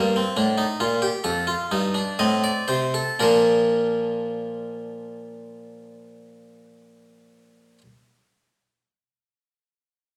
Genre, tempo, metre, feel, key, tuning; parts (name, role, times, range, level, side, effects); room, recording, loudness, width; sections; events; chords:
classical, baroque-style 3-part fugue for harpsichord; 57-73 BPM; 4/4; straight; Bb major; A4 = 437 Hz
harpsichord; solo; 0.0-7.8 s; F2 to F5; -23 LUFS; equal
wet recital hall reverb, RT60 1.4 s; -23 LUFS; mono
0.0-3.2 A section; 3.2-7.4 B section
slowing down 0.0-3.2
0.0 Bb; 1.2 F7; 3.2 Bb